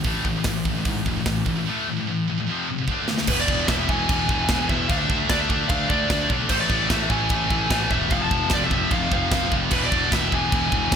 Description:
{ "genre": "heavy metal", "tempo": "149 BPM", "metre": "4/4", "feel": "straight", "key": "A harmonic minor", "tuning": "A4 = 439 Hz", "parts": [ { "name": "scooped high-gain guitar", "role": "riff", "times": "0.0-11.0 s", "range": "E2 to D4", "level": "-26 LUFS", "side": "left 11 dB", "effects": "distortion" }, { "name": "scooped high-gain guitar", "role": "riff", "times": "0.0-11.0 s", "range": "E2 to D4", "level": "-26 LUFS", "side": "right 14 dB", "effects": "distortion" }, { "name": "fuzz picked electric bass", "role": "bass", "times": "0.0-11.0 s", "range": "E1 to G#2", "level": "-28 LUFS", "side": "right 1 dB", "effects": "overdrive" }, { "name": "tight metal drum kit", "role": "drums", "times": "0.0-11.0 s", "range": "china cymbal, crash cymbal, hi-hat, kick drum, snare drum", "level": "-25 LUFS", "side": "right 1 dB", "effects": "none" }, { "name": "high-gain lead guitar", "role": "melody", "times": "3.3-11.0 s", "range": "B4 to A5", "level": "-26 LUFS", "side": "left 1 dB", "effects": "distortion" } ], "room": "light reverb", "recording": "none", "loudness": "-20 LUFS", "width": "side -7 dB against mid", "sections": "0.0-3.3 A section; 3.3-11.0 B section", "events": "drum fill 2.9-3.3", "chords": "0.1 A5; 2.5 F5; 2.9 D5; 3.3 E; 4.9 D5; 6.5 A5; 8.1 F5; 9.7 E" }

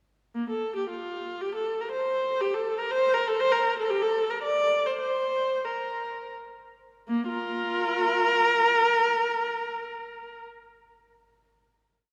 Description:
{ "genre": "classical, baroque-style suite movement for unaccompanied viola", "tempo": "78-123 BPM", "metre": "3/4", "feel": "rubato", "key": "Bb major", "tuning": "A4 = 442 Hz", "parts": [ { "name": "warm viola", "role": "solo", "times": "0.3-10.4 s", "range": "Bb3 to D5", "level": "-27 LUFS", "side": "equal", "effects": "none" } ], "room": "wet church reverb, RT60 2.6 s", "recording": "heard from further back in the room", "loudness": "-26 LUFS", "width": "mono", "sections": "0.4-7.1 A section; 7.1-11.6 final chord", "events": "slowing down 2.7-7.1", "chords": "none" }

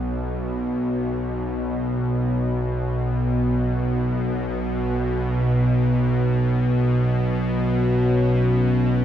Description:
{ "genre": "dark ambient drone", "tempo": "free time", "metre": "none", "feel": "none", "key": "unclear", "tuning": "A4 = 439 Hz", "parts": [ { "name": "bowed-like drone", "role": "drone", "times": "0.0-9.0 s", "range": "B1 to B2", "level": "-20 LUFS", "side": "equal", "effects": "built-in reverb" }, { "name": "sweeping resonant pad", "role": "sustained chords", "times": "4.7-9.0 s", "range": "B2 to B4", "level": "-23 LUFS", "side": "equal", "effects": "chorus, phaser" } ], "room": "wet huge ambient reverb, RT60 7.4 s", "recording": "in a vast, echoing space", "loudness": "-20 LUFS", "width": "side -10 dB against mid", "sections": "0.0-9.0 A section", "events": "none", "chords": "0.0 Bsus2" }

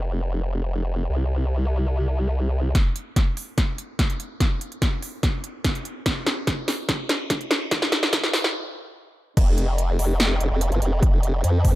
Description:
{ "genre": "heavy wobble dubstep", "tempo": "145 BPM", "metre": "4/4", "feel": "half-time", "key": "unclear", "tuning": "A4 = 440 Hz", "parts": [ { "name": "formant-sweep wobble bass", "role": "bass", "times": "0.0-2.7, 9.4-11.7 s", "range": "F1 to F2", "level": "-21 LUFS", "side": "equal", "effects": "chorus, overdrive" }, { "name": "big-room dance drum kit", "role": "drums", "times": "2.7-11.7 s", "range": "crash cymbal, hi-hat, snare drum", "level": "-24 LUFS", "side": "equal", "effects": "none" }, { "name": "electronic kick drum", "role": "drums", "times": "2.7-11.7 s", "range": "none", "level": "-21 LUFS", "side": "equal", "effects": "none" } ], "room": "light reverb", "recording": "dark, warm production, high-pass filter", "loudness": "-21 LUFS", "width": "side -16 dB against mid", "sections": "0.0-2.8 A section; 2.8-9.4 B section; 9.4-11.8 C section", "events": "build-up 2.8-9.4; drum fill 2.8-8.5; filter sweep 2.8-9.4; stop 8.5-9.4; drop 9.4-11.8", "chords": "none" }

